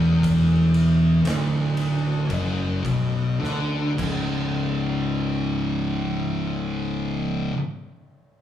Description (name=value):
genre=stoner and doom metal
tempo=50-61 BPM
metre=4/4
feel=straight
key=C# phrygian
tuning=A4 = 440 Hz
part: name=thick fuzz guitar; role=riff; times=0.0-7.6 s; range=C#2 to D3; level=-26 LUFS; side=left 6 dB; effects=distortion
part: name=thick fuzz guitar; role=riff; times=0.0-7.6 s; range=C#2 to D3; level=-23 LUFS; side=right 2 dB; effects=distortion
part: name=growling fingered electric bass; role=bass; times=0.0-7.5 s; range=C#1 to D2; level=-29 LUFS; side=left 1 dB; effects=overdrive
part: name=oversized low-tuned drum kit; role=drums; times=0.2-4.3 s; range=crash cymbal, kick drum, ride cymbal, snare drum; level=-33 LUFS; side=equal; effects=none
room=moderate large studio reverb, RT60 1.2 s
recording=band playing live in one room, small room ambience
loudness=-21 LUFS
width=side -11 dB against mid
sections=0.0-4.6 A section; 4.6-8.4 B section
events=slowing down 0.0-4.6; drum fill 3.4-4.6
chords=0.0 E5; 4.0 C#5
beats=| 0.23 1.24 2.30 3.40 | 4.58 5.78 6.99